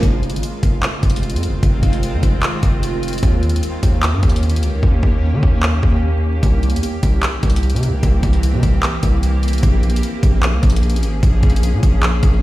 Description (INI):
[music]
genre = hip hop, trap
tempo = 150 BPM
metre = 4/4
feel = half-time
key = F minor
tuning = A4 = 440 Hz
[part]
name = granular cloud pad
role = sustained chords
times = 0.0-12.4 s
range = Eb3 to Ab4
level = -24 LUFS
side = equal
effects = built-in reverb
[part]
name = hard-hitting 808-style bass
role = bass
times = 0.0-12.4 s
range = F1 to Eb3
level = -17 LUFS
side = equal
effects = none
[part]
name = trap drum kit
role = drums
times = 0.0-12.3 s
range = handclaps, hi-hat, kick drum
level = -16 LUFS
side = equal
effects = none
[sound]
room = little or no reverb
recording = played on a big sound system in a bare room, large studio reverb, vinyl crackle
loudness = -14 LUFS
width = side -17 dB against mid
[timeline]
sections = 0.0-12.4 A section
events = hi-hats muted 4.8-6.4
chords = 0.0 Fm7; 3.2 Eb7; 6.4 C7; 9.6 Bbm7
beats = | 0.03 0.43 0.83 1.23 | 1.63 2.03 2.43 2.83 | 3.23 3.63 4.03 4.43 | 4.83 5.23 5.63 6.03 | 6.43 6.83 7.23 7.63 | 8.03 8.43 8.83 9.23 | 9.63 10.03 10.43 10.83 | 11.23 11.63 12.03